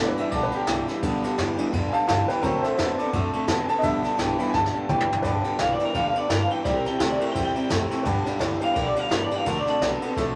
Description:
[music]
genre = rockabilly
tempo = 171 BPM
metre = 4/4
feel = swing 58% on 8ths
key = G major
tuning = A4 = 441 Hz
[part]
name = clear upright piano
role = accompaniment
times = 0.0-10.3 s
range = D3 to B5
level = -30 LUFS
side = equal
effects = none
[part]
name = picked steel-string acoustic guitar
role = accompaniment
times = 0.0-10.4 s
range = G2 to A4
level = -34 LUFS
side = equal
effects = none
[part]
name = electric guitar through a small old amp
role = riff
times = 0.0-10.3 s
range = G2 to B3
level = -31 LUFS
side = equal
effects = none
[part]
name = upright bass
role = bass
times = 0.0-10.4 s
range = G1 to G2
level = -34 LUFS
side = equal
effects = none
[part]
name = jazz brush drum kit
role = drums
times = 0.2-10.3 s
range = kick drum, ride cymbal, snare drum, toms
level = -31 LUFS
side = equal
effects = none
[part]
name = electric guitar through a small old amp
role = melody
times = 5.6-9.9 s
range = Bb4 to G5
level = -28 LUFS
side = equal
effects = none
[sound]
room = wet studio ambience, RT60 0.5 s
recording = none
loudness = -24 LUFS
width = mono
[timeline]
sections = 0.0-5.2 A section; 5.2-10.4 B section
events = upright piano solo 0.0-5.2; drum fill 4.5-5.2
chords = 0.0 G; 2.4 D7; 3.8 G; 6.6 C; 8.1 G; 9.5 D7

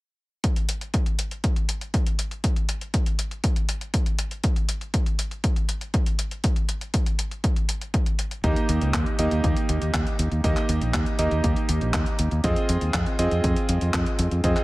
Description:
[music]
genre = italo disco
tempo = 120 BPM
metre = 4/4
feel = straight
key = unclear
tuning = A4 = 440 Hz
[part]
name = clean 12-bit digital drum machine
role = drums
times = 0.4-14.6 s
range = handclaps, hi-hat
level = -30 LUFS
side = left 1 dB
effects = none
[part]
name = electronic kick drum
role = drums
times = 0.4-14.5 s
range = none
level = -24 LUFS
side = equal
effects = overdrive
[part]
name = clear electric grand piano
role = stabs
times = 8.4-14.6 s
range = Bb3 to Eb5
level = -26 LUFS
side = right 2 dB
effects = digital delay
[part]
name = modern bright fingered electric bass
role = bass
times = 8.4-14.5 s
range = Bb1 to F2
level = -24 LUFS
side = equal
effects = tube saturation
[sound]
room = digital ambience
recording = none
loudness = -22 LUFS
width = side -20 dB against mid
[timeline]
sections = 0.4-14.6 A section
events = none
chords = 0.4 N.C.; 8.4 Eb; 12.4 Fm7

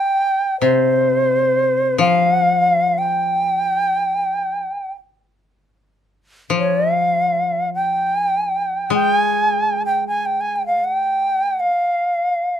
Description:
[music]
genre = japanese traditional, Japanese chamber music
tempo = free time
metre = none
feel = none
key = unclear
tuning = A4 = 440 Hz
[part]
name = bright reedy shakuhachi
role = melody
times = 0.0-12.6 s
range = C5 to Ab5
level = -17 LUFS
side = right 1 dB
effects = none
[part]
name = koto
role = accompaniment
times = 0.6-11.7 s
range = C3 to Ab3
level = -22 LUFS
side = left 5 dB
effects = none
[sound]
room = light reverb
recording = lossy compression artefacts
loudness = -16 LUFS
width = side -9 dB against mid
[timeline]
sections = 0.0-12.6 A section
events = none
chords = none

